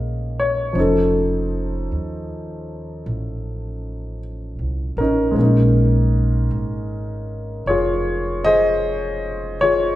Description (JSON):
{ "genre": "jazz ballad", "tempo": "52 BPM", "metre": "4/4", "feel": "swing 66% on 8ths", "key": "Bb minor", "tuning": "A4 = 444 Hz", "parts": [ { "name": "warm baby grand piano", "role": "accompaniment", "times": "0.0-10.0 s", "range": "F3 to F5", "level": "-20 LUFS", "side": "left 1 dB", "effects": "none" }, { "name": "upright bass", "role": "bass", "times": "0.0-9.9 s", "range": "F1 to Eb2", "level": "-22 LUFS", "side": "equal", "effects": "none" } ], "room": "wet recital hall reverb, RT60 1.6 s", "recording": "recorded in a church or concert hall", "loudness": "-17 LUFS", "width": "side -14 dB against mid", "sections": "0.0-10.0 A section", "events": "none", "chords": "0.0 Gb69 (rootless); 0.8 F7b13; 5.4 Bbm11", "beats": "| 0.76 1.92 3.07 4.21 | 5.36 6.51 7.66 8.81" }